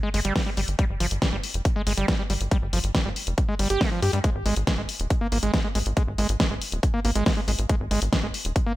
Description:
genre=psychedelic trance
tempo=139 BPM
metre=4/4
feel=straight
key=unclear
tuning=A4 = 440 Hz
part: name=overdriven acid bass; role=riff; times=0.0-8.7 s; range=F3 to G4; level=-29 LUFS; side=right 1 dB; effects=distortion, auto-pan, sidechain pumping, dub echo
part: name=tight sequencer bass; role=bass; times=0.1-8.5 s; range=Eb1 to G2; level=-26 LUFS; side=equal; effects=none
part: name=big-room dance drum kit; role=drums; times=0.1-8.6 s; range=hi-hat, snare drum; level=-28 LUFS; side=left 1 dB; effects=none
part: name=electronic kick drum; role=drums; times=0.4-8.6 s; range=none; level=-25 LUFS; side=equal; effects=none
room=little or no reverb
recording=none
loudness=-22 LUFS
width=side -17 dB against mid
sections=0.0-8.8 A section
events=none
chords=0.0 N.C.; 4.2 Ab5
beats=0.36 | 0.79 1.22 1.65 2.08 | 2.51 2.95 3.38 3.81 | 4.24 4.67 5.10 5.54 | 5.97 6.40 6.83 7.26 | 7.69 8.13 8.56

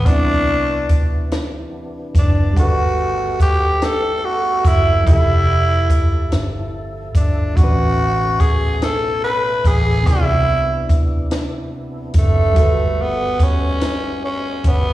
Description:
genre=slow six-eight R&B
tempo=48 BPM (dotted quarters)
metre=6/8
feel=straight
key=unclear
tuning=A4 = 440 Hz
part: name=growling tenor saxophone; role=melody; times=0.0-14.9 s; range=A3 to B4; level=-19 LUFS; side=equal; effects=slapback echo, plate reverb
part: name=reed electric piano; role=accompaniment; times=0.0-14.9 s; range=A2 to F#5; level=-28 LUFS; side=right 1 dB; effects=plate reverb, slapback echo
part: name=percussive tonewheel organ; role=sustained chords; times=0.0-14.9 s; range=B2 to G#5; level=-31 LUFS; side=equal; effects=overdrive, chorus vibrato, slow rotary speaker, plate reverb
part: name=vintage muted fingered electric bass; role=bass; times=0.0-14.9 s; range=F1 to D2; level=-19 LUFS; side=equal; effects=none
part: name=compact cocktail drum kit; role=drums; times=0.1-14.8 s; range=hi-hat, kick drum, snare drum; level=-16 LUFS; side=equal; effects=none
room=light reverb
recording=live gig heard through the venue's PA, recital hall reverb, small room reverb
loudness=-14 LUFS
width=side -15 dB against mid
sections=0.0-14.9 A section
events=none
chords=0.1 Cmaj9; 2.6 Gmaj9; 5.1 Fmaj9; 7.6 Amaj9; 10.1 Cmaj9; 12.6 Gmaj9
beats=| 0.06 1.31 | 2.56 3.81 | 5.06 6.31 | 7.56 8.81 | 10.06 11.31 | 12.56 13.81

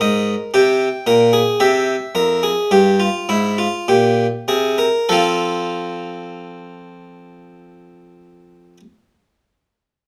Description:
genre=classical, baroque-style 3-part fugue for harpsichord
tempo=48-58 BPM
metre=4/4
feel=straight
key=unclear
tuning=A4 = 440 Hz
part: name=harpsichord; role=solo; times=0.0-8.8 s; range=F2 to G5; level=-17 LUFS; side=equal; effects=none
room=moderate large studio reverb, RT60 0.8 s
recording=none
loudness=-17 LUFS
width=mono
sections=0.0-5.1 A section; 5.1-10.0 B section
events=slowing down 0.0-5.1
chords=0.0 N.C.; 0.5 C7; 5.1 F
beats=| 0.53 1.60 2.71 3.87 | 5.08 6.31 7.55 8.78

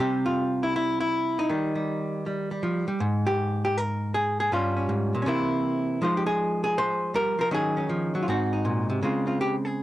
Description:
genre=solo jazz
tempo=159 BPM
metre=4/4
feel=swing 66% on 8ths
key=Ab major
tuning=A4 = 440 Hz
part: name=archtop guitar, miked and amplified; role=solo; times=0.0-9.8 s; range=G2 to C5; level=-24 LUFS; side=equal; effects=none
room=light reverb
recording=dry, gritty hardware recording, cassette tape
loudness=-24 LUFS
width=side -14 dB against mid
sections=0.0-3.0 A section; 3.0-9.8 B section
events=none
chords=0.0 C; 1.5 Ebadd9; 3.0 Absus2; 4.5 Gm7b5; 5.3 C7; 6.0 Fm7; 7.5 Ebm7; 8.3 Ab7; 9.0 Dbmaj7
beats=0.36 0.73 1.11 | 1.49 1.87 2.24 2.62 | 3.00 3.37 3.75 4.13 | 4.50 4.88 5.26 5.63 | 6.01 6.38 6.76 7.14 | 7.51 7.89 8.26 8.64 | 9.01 9.39 9.77

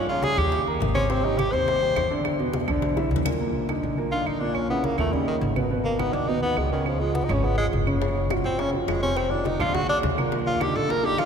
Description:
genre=Afro-Cuban jazz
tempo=208 BPM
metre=4/4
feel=straight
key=unclear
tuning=A4 = 440 Hz
part: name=clear tenor saxophone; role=melody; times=0.0-11.3 s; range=Eb3 to C5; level=-26 LUFS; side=left 1 dB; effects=none
part: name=warm baby grand piano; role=accompaniment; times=0.0-11.3 s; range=Bb2 to C6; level=-27 LUFS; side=right 2 dB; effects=none
part: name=upright bass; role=bass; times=0.0-11.3 s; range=F1 to Fb2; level=-29 LUFS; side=equal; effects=none
part: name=bongos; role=percussion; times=0.1-3.3, 8.0-11.3 s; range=none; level=-34 LUFS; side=left 4 dB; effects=none
part: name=congas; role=percussion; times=0.1-11.3 s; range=none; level=-32 LUFS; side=equal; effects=none
part: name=claves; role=percussion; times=0.4-11.3 s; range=none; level=-38 LUFS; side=right 6 dB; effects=none
room=wet cathedral reverb, RT60 4.7 s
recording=recorded in a church or concert hall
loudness=-22 LUFS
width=side -7 dB against mid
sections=0.0-3.4 A section; 3.4-11.3 A section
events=tenor saxophone solo 0.0-3.4, 3.4-11.3; drum fill 3.0-3.4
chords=0.0 Bbm; 0.5 Eb; 1.1 Abmaj7; 2.3 E5; 3.4 Eb5; 4.6 Bbdim; 5.1 Abmadd11; 5.7 Abm7; 6.9 Db; 8.0 Gbmaj7#11; 9.2 F5; 9.7 Bb7(#5, no3); 10.3 Eb5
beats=0.24 0.53 0.81 | 1.10 1.39 1.68 1.97 | 2.25 2.54 2.83 3.12 | 3.40 3.69 3.98 4.27 | 4.56 4.84 5.13 5.42 | 5.71 6.00 6.29 6.57 | 6.86 7.15 7.44 7.73 | 8.01 8.30 8.59 8.88 | 9.17 9.46 9.74 10.03 | 10.32 10.61 10.89 11.18

